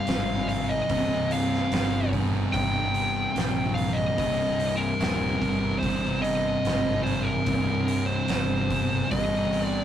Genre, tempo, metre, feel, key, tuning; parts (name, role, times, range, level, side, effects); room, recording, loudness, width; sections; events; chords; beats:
stoner and doom metal; 73 BPM; 4/4; straight; C minor; A4 = 440 Hz
fuzz lead guitar; melody; 0.0-9.8 s; Bb4 to G5; -28 LUFS; equal; distortion
thick fuzz guitar; riff; 0.0-9.8 s; C2 to C3; -29 LUFS; left 4 dB; distortion
thick fuzz guitar; riff; 0.0-9.8 s; C2 to C3; -31 LUFS; right 7 dB; distortion
fuzz fingered electric bass; bass; 0.1-9.8 s; C1 to Bb1; -30 LUFS; equal; overdrive
oversized low-tuned drum kit; drums; 0.1-9.7 s; hi-hat, kick drum, snare drum; -32 LUFS; right 1 dB
moderate studio ambience, RT60 0.5 s; rough rehearsal-room recording, tube saturation; -23 LUFS; side -10 dB against mid
0.0-9.8 A section
0.0 Cm
0.08 | 0.90 1.72 2.54 3.36 | 4.18 5.00 5.82 6.64 | 7.47 8.29 9.11